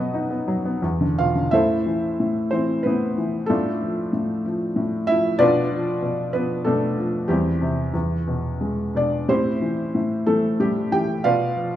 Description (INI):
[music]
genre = classical, lyrical solo piano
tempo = 93 BPM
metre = 3/4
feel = uneven beats, rubato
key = A minor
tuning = A4 = 440 Hz
[part]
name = felt-muted upright piano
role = solo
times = 0.0-11.8 s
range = E2 to G5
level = -20 LUFS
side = equal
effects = none
[sound]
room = wet recital hall reverb, RT60 1.5 s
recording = minimal, uncompressed stereo recording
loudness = -20 LUFS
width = side -12 dB against mid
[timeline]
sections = 0.0-1.5 A section; 1.5-11.8 B section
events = none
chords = 0.0 B; 0.8 E5; 1.5 Am; 3.5 Dm/A; 5.4 Bdim; 7.3 C/E; 7.9 E; 9.3 Am7; 11.2 Bdim